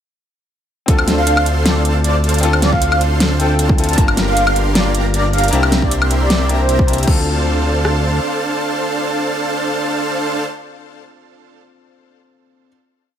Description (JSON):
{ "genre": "future bass", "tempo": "155 BPM", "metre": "4/4", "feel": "swing 53% on 16ths, half-time", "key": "D minor", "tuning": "A4 = 441 Hz", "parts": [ { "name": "clear grand piano", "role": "accompaniment", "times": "0.9-12.7 s", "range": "Bb3 to A5", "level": "-23 LUFS", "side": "left 6 dB", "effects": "sidechain pumping, ping-pong delay" }, { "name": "dense compressed supersaw", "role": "riff", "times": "0.9-10.4 s", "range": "C4 to C6", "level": "-20 LUFS", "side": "right 2 dB", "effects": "sidechain pumping" }, { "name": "fat analog bass", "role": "bass", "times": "0.9-8.2 s", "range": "G1 to D2", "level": "-17 LUFS", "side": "equal", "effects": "sidechain pumping" }, { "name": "pop drum kit", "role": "drums", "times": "0.9-7.9 s", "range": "kick drum, rim click", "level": "-15 LUFS", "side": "equal", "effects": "overdrive" }, { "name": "pop drum kit", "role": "drums", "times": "0.9-7.2 s", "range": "crash cymbal, hi-hat, snare drum, woodblock", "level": "-18 LUFS", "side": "left 1 dB", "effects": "overdrive" }, { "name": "breathy flute-like synth lead", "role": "melody", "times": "1.2-7.0 s", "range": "C5 to A5", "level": "-20 LUFS", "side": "right 1 dB", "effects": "analog chorus, sidechain pumping, digital delay" } ], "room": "light reverb, digital ambience", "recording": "none", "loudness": "-13 LUFS", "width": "side -9 dB against mid", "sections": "0.9-7.1 drop; 7.1-10.2 final chord", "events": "drop 0.9-7.1", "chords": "0.9 Dm7; 4.0 Gm7; 5.5 C7; 7.1 Dm7" }